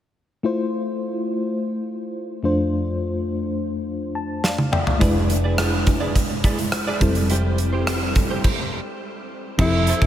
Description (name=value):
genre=1980s-style pop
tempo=105 BPM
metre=4/4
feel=straight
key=F major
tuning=A4 = 441 Hz
part: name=mellow FM electric piano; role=accompaniment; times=0.4-10.1 s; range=F2 to A5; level=-24 LUFS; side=left 2 dB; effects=chorus, tremolo
part: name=gated 80s drum kit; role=drums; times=4.4-10.1 s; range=crash cymbal, hi-hat, kick drum, rim click, snare drum, toms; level=-21 LUFS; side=equal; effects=none
part: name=direct-recorded clean electric guitar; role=riff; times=5.0-10.1 s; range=E4 to D5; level=-29 LUFS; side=right 4 dB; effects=ensemble chorus, tape echo
part: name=vintage muted fingered electric bass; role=bass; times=5.0-10.1 s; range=F1 to G1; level=-23 LUFS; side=equal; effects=none
part: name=breathy alto saxophone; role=melody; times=9.6-10.1 s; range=E4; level=-22 LUFS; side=right 1 dB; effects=none
part: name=sweeping resonant pad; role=sustained chords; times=9.9-10.1 s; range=F3 to E5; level=-32 LUFS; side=right 1 dB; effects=none
room=moderate huge ambient reverb, RT60 8.3 s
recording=dreamy mix soaked in reverb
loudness=-19 LUFS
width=side -11 dB against mid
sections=0.4-9.6 A section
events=FM electric piano fill 3.9-5.0; drum fill 4.4-5.0; stop 8.4-9.6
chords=0.4 Fmaj7; 2.4 Dm7/F; 5.0 E7/F; 7.0 Am7/F